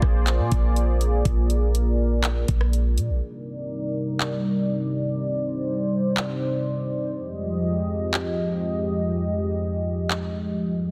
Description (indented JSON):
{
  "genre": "hip hop, atmospheric cloud-rap",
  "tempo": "122 BPM",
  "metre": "4/4",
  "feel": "half-time",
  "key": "C minor",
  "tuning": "A4 = 440 Hz",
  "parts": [
    { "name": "dark analog pad", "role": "sustained chords", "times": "0.0-10.9 s", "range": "F2 to Eb5", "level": "-27 LUFS", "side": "equal", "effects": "chorus, sidechain pumping, low-pass filter" },
    { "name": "clean 808-style bass", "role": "bass", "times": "0.0-3.2 s", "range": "Bb1 to Bb2", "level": "-23 LUFS", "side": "equal", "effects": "none" },
    { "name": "trap drum kit", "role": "drums", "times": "0.0-10.2 s", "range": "handclaps, hi-hat, kick drum, rim click", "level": "-28 LUFS", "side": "equal", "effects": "none" }
  ],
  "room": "light reverb, digital ambience",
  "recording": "dense, heavily limited modern master",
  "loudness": "-24 LUFS",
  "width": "mono",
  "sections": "0.0-3.2 A section; 3.2-10.9 B section",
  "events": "filter sweep on analog synth pad 3.2-10.9",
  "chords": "0.0 Bb7; 3.2 Cm7; 7.2 Fm7"
}